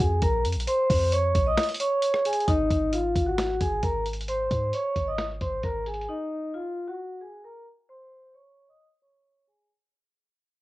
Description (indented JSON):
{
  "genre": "hip hop, trap",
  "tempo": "133 BPM",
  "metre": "4/4",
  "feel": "half-time",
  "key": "Bb minor",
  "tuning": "A4 = 440 Hz",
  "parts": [
    { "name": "vibraphone with medium mallets", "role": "melody", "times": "0.0-9.7 s", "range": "Eb4 to Eb6", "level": "-26 LUFS", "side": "equal", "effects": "cassette tape" },
    { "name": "warm 808-style bass", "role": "bass", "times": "0.0-6.1 s", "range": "Ab1 to Ab2", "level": "-29 LUFS", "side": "equal", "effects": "none" },
    { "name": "boom bap sampler-style drum kit", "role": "drums", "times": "0.0-6.1 s", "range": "finger snaps, hi-hat, kick drum, rim click, snare drum", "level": "-29 LUFS", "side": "equal", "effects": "cassette tape" }
  ],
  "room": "light reverb",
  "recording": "home recording on cassette, low-pass filter",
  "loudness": "-23 LUFS",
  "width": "side -18 dB against mid",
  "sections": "0.0-2.5 A section; 2.5-9.7 B section",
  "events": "kick muted 1.6-2.5; fade-out 2.5-9.7; filter sweep 2.5-9.7",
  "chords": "0.0 Bbm7; 2.5 Ab; 6.1 Bbm7 (rootless)"
}